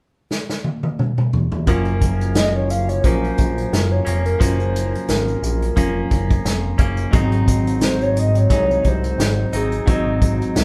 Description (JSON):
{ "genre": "indie pop, bedroom pop", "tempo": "88 BPM", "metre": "4/4", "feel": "swing 55% on 16ths", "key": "Gb lydian", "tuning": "A4 = 440 Hz", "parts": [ { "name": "unplugged drum kit", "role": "drums", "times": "0.3-10.6 s", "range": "hi-hat, kick drum, snare drum, toms", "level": "-22 LUFS", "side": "equal", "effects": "none" }, { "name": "direct-recorded clean electric guitar", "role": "accompaniment", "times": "1.7-10.6 s", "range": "Gb2 to Eb4", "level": "-29 LUFS", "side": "equal", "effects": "warbly pitch drift" }, { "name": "tine electric piano", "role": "accompaniment", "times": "1.7-10.6 s", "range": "Gb3 to Bb4", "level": "-27 LUFS", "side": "equal", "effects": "none" }, { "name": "fat analog bass", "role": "bass", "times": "1.7-10.6 s", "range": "F1 to C2", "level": "-23 LUFS", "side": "equal", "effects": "none" }, { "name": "warbly nostalgic lead", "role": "melody", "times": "2.4-10.6 s", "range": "Ab4 to F5", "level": "-26 LUFS", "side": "equal", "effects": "chorus" } ], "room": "moderate large studio reverb, RT60 0.8 s", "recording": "band playing live in one room, lossy compression artefacts", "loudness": "-19 LUFS", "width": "mono", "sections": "0.0-1.7 A section; 1.7-10.6 B section", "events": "drum fill 0.3-1.7", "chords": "0.0 N.C.; 1.7 Gbmaj7; 7.1 Ab7" }